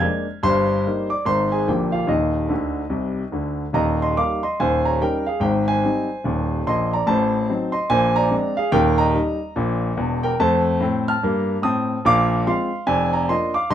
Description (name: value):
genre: jazz, stride piano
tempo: 145 BPM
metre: 4/4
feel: swing 61% on 8ths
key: Eb major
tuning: A4 = 439 Hz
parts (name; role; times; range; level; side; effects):
- warm grand piano; solo; 0.0-13.7 s; Eb1 to F6; -18 LUFS; equal; none
room: moderate club reverb, RT60 0.6 s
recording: minimal, uncompressed stereo recording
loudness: -18 LUFS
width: side -10 dB against mid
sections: 0.0-3.8 A section; 3.8-13.7 A section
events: grand piano fill 2.5-3.8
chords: 0.4 Eb/G; 1.3 Ab; 1.7 Bb; 2.1 Cmadd9/Eb; 3.8 Eb; 4.6 Eb7; 5.4 Abmaj7; 7.1 Adim7; 7.9 Bb9; 8.7 Eb; 10.4 F7; 12.0 Bb9; 12.9 Bb/F